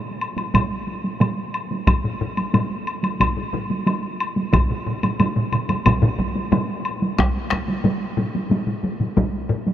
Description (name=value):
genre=japanese traditional, taiko drum ensemble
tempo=90 BPM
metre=4/4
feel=straight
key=none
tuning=none
part: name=woodblock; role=percussion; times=0.2-7.0 s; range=none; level=-26 LUFS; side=left 2 dB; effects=none
part: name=taiko ensemble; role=percussion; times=0.4-9.7 s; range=none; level=-23 LUFS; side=right 1 dB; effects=none
part: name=taiko ensemble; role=percussion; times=0.5-6.7 s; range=none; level=-25 LUFS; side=right 3 dB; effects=none
part: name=taiko ensemble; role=percussion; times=0.5-9.3 s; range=none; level=-24 LUFS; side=equal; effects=none
part: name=taiko ensemble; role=percussion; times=1.9-9.6 s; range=none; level=-26 LUFS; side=left 3 dB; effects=none
room=moderate huge ambient reverb, RT60 7.1 s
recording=none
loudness=-19 LUFS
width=side -11 dB against mid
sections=0.0-7.2 A section; 7.2-9.7 B section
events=none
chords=none